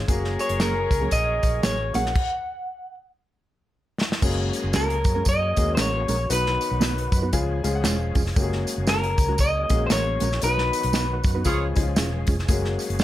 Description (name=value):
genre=uptempo 1960s-style soul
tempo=116 BPM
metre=4/4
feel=swing 60% on 8ths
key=F# major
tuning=A4 = 439 Hz
part: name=overdriven tonewheel organ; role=sustained chords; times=0.0-13.0 s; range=D#3 to G#4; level=-36 LUFS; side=right 1 dB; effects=slow rotary speaker, chorus vibrato
part: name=vintage muted fingered electric bass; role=bass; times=0.0-13.0 s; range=E1 to F#2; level=-26 LUFS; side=equal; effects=none
part: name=warm horn section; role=second line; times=0.1-1.9, 11.5-11.7 s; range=E#4 to C#5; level=-30 LUFS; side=equal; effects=none
part: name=warm upright piano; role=accompaniment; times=0.1-13.0 s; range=E#3 to B5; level=-29 LUFS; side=left 5 dB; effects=none
part: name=natural country drum kit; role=drums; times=0.1-13.0 s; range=crash cymbal, hi-hat, kick drum, snare drum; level=-25 LUFS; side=equal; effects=none
part: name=tambourine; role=percussion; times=0.1-13.0 s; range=none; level=-35 LUFS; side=right 5 dB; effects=none
part: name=electric guitar through a small old amp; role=melody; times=0.4-12.2 s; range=A#4 to F#5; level=-25 LUFS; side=left 1 dB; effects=slapback echo
part: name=mellow electric guitar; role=stabs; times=0.6-13.0 s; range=F#3 to B4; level=-27 LUFS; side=right 4 dB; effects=none
room=light reverb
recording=none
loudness=-20 LUFS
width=side -14 dB against mid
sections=0.0-4.2 A section; 4.2-13.0 B section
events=stop 2.2-4.2; drum fill 3.7-4.2; upright piano fill 6.8-8.4; band accent 10.4-12.5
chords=0.1 F#add9; 2.2 N.C.; 4.2 F#add9; 6.3 B; 7.3 C#; 8.4 F#add9; 10.4 B; 11.5 C#; 12.5 F#add9